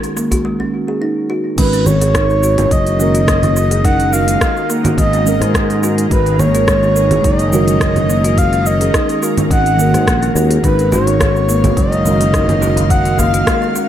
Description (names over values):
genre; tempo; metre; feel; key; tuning
organic downtempo; 106 BPM; 4/4; swing 53% on 16ths; unclear; A4 = 439 Hz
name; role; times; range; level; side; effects
muted felt-like synth keys; accompaniment; 0.0-13.9 s; D#3 to A#4; -21 LUFS; right 3 dB; chorus, sidechain pumping, tape echo
organic electronic drum kit; drums; 0.0-13.9 s; congas, crash cymbal, hi-hat, rim click, shaker; -20 LUFS; equal; overdrive, tape echo
kalimba; arpeggios; 0.2-13.9 s; D#3 to G#4; -21 LUFS; equal; analog delay
djembe; percussion; 0.3-0.4, 10.9-13.6 s; none; -24 LUFS; equal; tape echo
breathy flute-like synth lead; melody; 1.6-13.8 s; B4 to F#5; -17 LUFS; equal; wide subtle chorus, analog delay
ethereal airy pad; sustained chords; 2.9-13.9 s; D#3 to E#5; -23 LUFS; left 1 dB; ensemble chorus, built-in reverb, phaser, sidechain pumping
sustaining fretless electric bass; bass; 1.6-13.4 s; F#1 to G#2; -16 LUFS; equal; tube saturation
electronic kick drum; drums; 1.6-13.6 s; none; -17 LUFS; equal; none
room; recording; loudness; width
moderate spring reverb, RT60 2.7 s; echo-heavy mix; -11 LUFS; side -10 dB against mid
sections
0.0-1.6 A section; 1.6-13.9 B section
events
none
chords
0.0 D#m; 10.6 D#madd9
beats
0.45 1.02 | 1.58 2.15 2.71 3.28 | 3.85 4.41 4.98 5.54 | 6.11 6.68 7.24 7.81 | 8.37 8.94 9.51 10.07 | 10.64 11.20 11.77 12.34 | 12.90 13.47